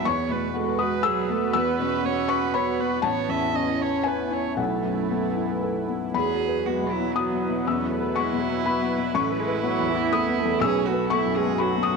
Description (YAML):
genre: neoclassical piano and strings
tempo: 121 BPM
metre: 3/4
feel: rubato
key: E major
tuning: A4 = 440 Hz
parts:
  - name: rich cello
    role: second line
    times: 0.0-12.0 s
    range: F#3 to G#4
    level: -29 LUFS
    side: right 12 dB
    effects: none
  - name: dark viola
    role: accompaniment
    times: 0.0-12.0 s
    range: E3 to E5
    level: -29 LUFS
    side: right 13 dB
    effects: none
  - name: felt-muted upright piano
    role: accompaniment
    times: 0.0-12.0 s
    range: A1 to E6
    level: -25 LUFS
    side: left 9 dB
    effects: none
  - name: sweeping resonant pad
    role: sustained chords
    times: 0.0-12.0 s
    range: F#3 to C#5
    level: -31 LUFS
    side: right 2 dB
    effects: chorus
room: moderate echo chamber reverb, RT60 1.8 s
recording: 1960s-style stereo with parts hard left and right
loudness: -22 LUFS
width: side -4 dB against mid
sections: 0.0-6.2 A section; 6.2-12.0 B section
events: none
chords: 0.1 Esus2; 3.0 Aadd9; 4.6 B7sus4; 6.2 Esus2; 9.1 Aadd9; 10.6 B7sus4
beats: | 0.06 0.55 1.05 | 1.55 2.05 2.54 | 3.04 3.54 4.06 | 4.58 5.11 5.63 | 6.15 6.66 7.16 | 7.66 8.16 8.65 | 9.14 9.64 10.13 | 10.62 11.11 11.60